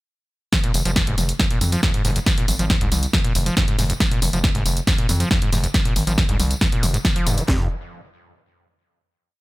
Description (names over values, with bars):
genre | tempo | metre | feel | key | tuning
driving peak-time techno | 138 BPM | 4/4 | straight | F minor | A4 = 440 Hz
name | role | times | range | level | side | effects
overdriven acid bass | riff | 0.5-7.7 s | F1 to F3 | -25 LUFS | equal | distortion, sidechain pumping, digital delay
punchy analog drum machine | drums | 0.5-7.5 s | hi-hat, snare drum, tambourine, toms | -22 LUFS | equal | none
techno drum kit | drums | 0.5-7.6 s | kick drum, snare drum | -21 LUFS | equal | overdrive
gritty driven synth bass | bass | 0.7-7.7 s | F1 to F2 | -23 LUFS | equal | sidechain pumping
room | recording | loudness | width
little or no reverb | none | -17 LUFS | side -20 dB against mid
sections
0.5-7.5 drop; 7.5-9.2 final note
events
drop 0.5-7.5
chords
0.5 Fm; 7.5 N.C.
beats
| 0.53 0.96 1.40 1.83 | 2.27 2.70 3.13 3.57 | 4.00 4.44 4.87 5.31 | 5.74 6.18 6.61 7.05 | 7.48